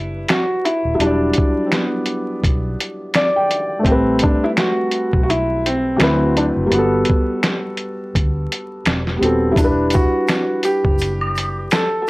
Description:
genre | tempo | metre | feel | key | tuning
lo-fi hip hop | 84 BPM | 4/4 | swing 59% on 16ths | E minor | A4 = 441 Hz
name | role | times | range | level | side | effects
felt-muted upright piano | melody | 0.0-12.1 s | A#3 to A4 | -20 LUFS | equal | low-pass filter, tape echo
dark upright piano | accompaniment | 0.0-12.1 s | D2 to G5 | -20 LUFS | left 1 dB | cassette tape, low-pass filter
vintage muted fingered electric bass | bass | 0.0-11.7 s | D#1 to D2 | -23 LUFS | equal | tube saturation
lo-fi sampler-style drum kit | drums | 0.3-11.9 s | finger snaps, hi-hat, kick drum, snare drum | -18 LUFS | equal | none
tube shaker and woodblock | percussion | 9.6-12.1 s | none | -27 LUFS | equal | none
room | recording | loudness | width
light reverb | dry, gritty hardware recording, transformer saturation, vinyl crackle | -15 LUFS | side -22 dB against mid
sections
0.0-12.1 A section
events
none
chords
0.0 Em7; 3.9 Am9; 6.0 D13; 6.7 Gmaj9; 9.6 Em7

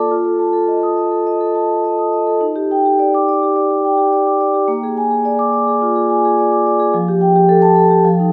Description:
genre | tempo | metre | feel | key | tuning
classical, contemporary piece for solo vibraphone | 106 BPM | 4/4 | rubato | unclear | A4 = 440 Hz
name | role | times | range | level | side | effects
vibraphone with medium mallets | solo | 0.0-8.3 s | F3 to Eb6 | -15 LUFS | equal | none
room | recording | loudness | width
wet concert hall reverb, RT60 2.3 s | heard from further back in the room | -15 LUFS | mono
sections
0.0-8.3 A section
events
none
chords
0.1 F7; 2.4 Ebmaj7; 4.7 Bb7; 6.9 Fadd9

